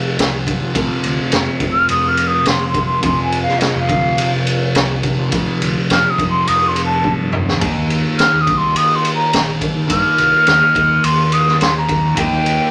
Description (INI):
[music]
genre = psychedelic rock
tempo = 105 BPM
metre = 4/4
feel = straight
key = unclear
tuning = A4 = 440 Hz
[part]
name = fuzz guitar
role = riff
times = 0.0-12.7 s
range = F2 to Eb4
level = -21 LUFS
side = equal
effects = distortion, phaser
[part]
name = fingered electric bass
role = bass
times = 0.2-12.6 s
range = Bb1 to F3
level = -28 LUFS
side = equal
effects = none
[part]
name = raw garage drum kit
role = drums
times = 0.2-12.6 s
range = kick drum, ride cymbal, snare drum, toms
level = -22 LUFS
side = equal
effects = none
[part]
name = mellow hollow silver concert flute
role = melody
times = 1.7-12.7 s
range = Eb5 to F6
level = -17 LUFS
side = equal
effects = none
[sound]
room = moderate club reverb, RT60 0.8 s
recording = none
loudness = -16 LUFS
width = mono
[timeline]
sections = 0.0-12.7 A section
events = flute solo 0.0-12.7; drum fill 7.0-7.6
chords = 0.0 F5; 7.6 Eb5